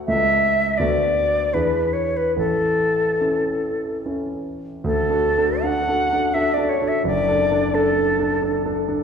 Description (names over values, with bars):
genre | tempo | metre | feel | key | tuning
classical, romantic duo for flute and grand piano | 71-89 BPM | 3/4 | rubato | A major, D major from 4.8 s | A4 = 441 Hz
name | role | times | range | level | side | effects
warm concert grand piano | accompaniment | 0.0-9.0 s | F#1 to A4 | -22 LUFS | equal | none
silver concert flute | melody | 0.1-8.8 s | A4 to F#5 | -19 LUFS | equal | none
room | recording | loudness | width
wet recital hall reverb, RT60 1.5 s | heard from further back in the room | -18 LUFS | side -6 dB against mid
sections
0.0-4.8 A section; 4.8-9.0 B section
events
none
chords
0.1 A/C#; 0.8 Bm7/D; 1.5 E7; 2.4 A; 4.8 D; 7.0 D/F#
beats
| 0.07 0.78 1.53 | 2.37 3.21 4.04 | 4.84 5.63 6.34 | 7.04 7.73 8.41